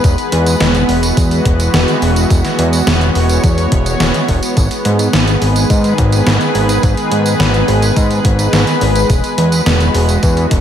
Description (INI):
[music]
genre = synthwave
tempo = 106 BPM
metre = 4/4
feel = straight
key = unclear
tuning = A4 = 441 Hz
[part]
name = lush unison pad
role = sustained chords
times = 0.0-10.6 s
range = D#3 to C#5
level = -16 LUFS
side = equal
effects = chorus, sidechain pumping
[part]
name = fat analog bass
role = bass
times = 0.0-10.6 s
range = E1 to G#2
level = -14 LUFS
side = equal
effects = none
[part]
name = electronic kick drum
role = drums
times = 0.0-10.6 s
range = none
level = -14 LUFS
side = equal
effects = overdrive
[part]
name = gated 80s digital drum machine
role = drums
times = 0.0-10.6 s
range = hi-hat, snare drum, tambourine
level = -18 LUFS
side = equal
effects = gated reverb, gated reverb snare, overdrive
[sound]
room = light reverb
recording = none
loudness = -10 LUFS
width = side -9 dB against mid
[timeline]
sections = 0.0-10.6 A section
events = none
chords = 0.0 Eadd9; 4.6 G#m; 9.1 Eadd9